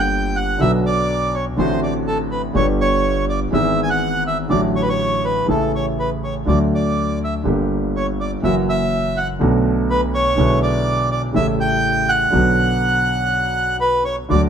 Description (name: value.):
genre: tango.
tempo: 123 BPM.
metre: 4/4.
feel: rubato.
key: unclear.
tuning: A4 = 440 Hz.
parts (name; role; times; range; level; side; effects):
bandoneon; melody; 0.0-14.4 s; A4 to G#5; -20 LUFS; right 1 dB; none.
warm concert grand piano; accompaniment; 0.0-14.5 s; G1 to G#4; -19 LUFS; equal; none.
upright bass; bass; 0.0-14.5 s; F#1 to D2; -24 LUFS; equal; none.
room: moderate studio reverb, RT60 0.9 s.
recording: band playing live in one room.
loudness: -16 LUFS.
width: side -8 dB against mid.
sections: 0.0-14.5 A section.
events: none.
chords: 0.0 Gm; 0.6 Bm; 1.6 D7/A; 2.5 G; 3.5 E/G#; 4.5 D/A; 5.5 A; 6.5 D; 7.5 Gm; 8.4 F#7; 9.4 Bm7; 10.4 E7/B; 11.4 A7; 12.3 Bm.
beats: 0.11 | 0.60 1.09 1.57 2.06 | 2.55 3.03 3.52 4.01 | 4.50 4.99 5.48 5.98 | 6.47 6.96 7.45 7.94 | 8.43 8.92 9.41 9.90 | 10.38 10.87 11.35 11.84 | 12.33 12.82 13.31 13.81 | 14.30.